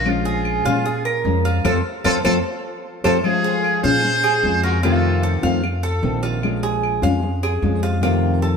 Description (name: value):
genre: latin, Cuban son and guajira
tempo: 151 BPM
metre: 4/4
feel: straight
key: Bb minor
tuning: A4 = 443 Hz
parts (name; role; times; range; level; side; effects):
- trumpet with metal mute; melody; 0.0-5.4 s; F4 to C5; -23 LUFS; equal; none
- nylon-string guitar; accompaniment; 0.0-8.6 s; C3 to F4; -22 LUFS; left 4 dB; none
- Cuban tres; arpeggios; 0.0-8.6 s; F4 to F5; -23 LUFS; right 2 dB; none
- upright bass; bass; 0.0-8.6 s; Bb1 to Bb2; -22 LUFS; right 1 dB; none
- claves; percussion; 0.1-8.2 s; none; -31 LUFS; right 2 dB; none
- dark studio violin section; second line; 3.2-5.4 s; F4 to Ab4; -27 LUFS; left 2 dB; none
room: moderate plate reverb, RT60 2.8 s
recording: heard from further back in the room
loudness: -17 LUFS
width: side -6 dB against mid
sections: 0.0-3.2 A section; 3.2-8.6 B section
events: muted trumpet solo 0.0-3.2; band accent 1.6-3.2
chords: 0.1 Bbm7; 1.6 F; 3.2 Bbm7; 4.8 F7; 6.4 Bbm7; 8.0 F7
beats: | 0.06 0.46 0.85 1.25 | 1.65 2.05 2.45 2.84 | 3.24 3.64 4.04 4.44 | 4.84 5.24 5.63 6.03 | 6.43 6.83 7.23 7.63 | 8.03 8.42